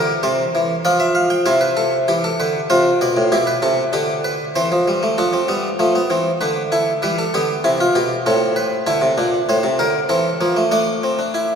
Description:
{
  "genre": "classical, baroque-style 3-part fugue for harpsichord",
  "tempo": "97 BPM",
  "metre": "3/4",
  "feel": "straight",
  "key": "F major",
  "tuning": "A4 = 444 Hz",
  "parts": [
    { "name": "harpsichord", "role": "solo", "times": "0.0-11.6 s", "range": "A2 to G5", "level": "-15 LUFS", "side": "equal", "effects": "none" }
  ],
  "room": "wet cathedral reverb, RT60 4.4 s",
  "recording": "recorded in a church or concert hall",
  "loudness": "-15 LUFS",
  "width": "side -7 dB against mid",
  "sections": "0.0-5.2 A section; 5.2-11.6 B section",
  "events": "none",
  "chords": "0.0 C; 0.8 Fsus2; 1.5 C; 2.7 Dm7/C; 3.3 G/B; 4.6 C/E; 5.2 F; 6.4 Dsus2; 7.0 Em; 8.3 Am; 8.9 D5; 10.1 Fmaj7/E; 10.7 Asus4"
}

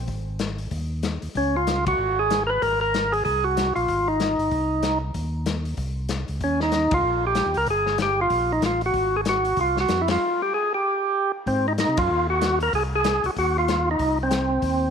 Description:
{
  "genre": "soul jazz organ trio",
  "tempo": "190 BPM",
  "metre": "4/4",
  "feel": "swing 61% on 8ths",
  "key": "Ab mixolydian",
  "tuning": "A4 = 442 Hz",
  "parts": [
    { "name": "tonewheel organ", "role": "bass", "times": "0.0-14.9 s", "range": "G1 to C3", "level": "-28 LUFS", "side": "equal", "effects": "slow rotary speaker" },
    { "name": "vintage drum kit", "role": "drums", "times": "0.1-14.7 s", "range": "hi-hat, kick drum, ride cymbal, snare drum", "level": "-30 LUFS", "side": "left 5 dB", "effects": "none" },
    { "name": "percussive tonewheel organ", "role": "melody", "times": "1.4-14.9 s", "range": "C4 to Cb5", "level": "-21 LUFS", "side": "right 1 dB", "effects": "slow rotary speaker, overdrive" }
  ],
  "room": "moderate echo chamber reverb, RT60 1.7 s, small room ambience",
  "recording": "1960s-style stereo",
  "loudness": "-20 LUFS",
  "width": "side -7 dB against mid",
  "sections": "0.0-11.5 A section; 11.5-14.9 A section",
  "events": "band accent 1.8, 6.9, 10.0, 11.9; stop 10.2-11.5",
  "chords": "0.0 Ab5; 1.3 Db; 2.6 Ab; 6.4 Eb7; 8.9 Ab7; 10.2 N.C.; 11.5 Ab7"
}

